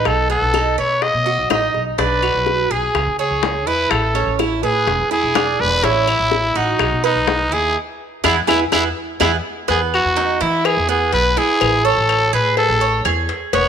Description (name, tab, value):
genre	latin, Cuban son and guajira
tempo	125 BPM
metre	4/4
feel	straight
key	E major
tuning	A4 = 440 Hz
part	growling trumpet	melody	0.0-13.7 s	D#4 to D#5	-18 LUFS	equal	none
part	Cuban tres	arpeggios	0.0-13.7 s	B3 to C#5	-21 LUFS	right 9 dB	none
part	upright bass	bass	0.0-13.7 s	E1 to E3	-23 LUFS	left 1 dB	none
part	bongos and cowbell	percussion	0.1-13.7 s	none	-23 LUFS	left 13 dB	none
part	claves	percussion	0.1-13.3 s	none	-25 LUFS	left 13 dB	none
room	moderate echo chamber reverb, RT60 2.0 s, small room ambience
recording	1960s-style stereo with parts hard left and right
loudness	-15 LUFS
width	side -8 dB against mid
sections	0.0-9.7 A section; 9.7-13.7 B section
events	band accent 7.8-9.7; drum fill 9.4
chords	0.1 B7; 2.0 Bm; 2.9 C#m; 3.9 A; 4.9 E7; 5.8 A; 6.8 B; 7.8 E; 9.7 E5; 11.6 Amaj7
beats	| 0.06 0.54 1.02 1.50 | 1.98 2.46 2.94 3.42 | 3.91 4.39 4.87 5.35 | 5.83 6.31 6.80 7.28 | 7.76 8.24 8.72 9.20 | 9.68 10.16 10.65 11.13 | 11.61 12.09 12.57 13.05 | 13.53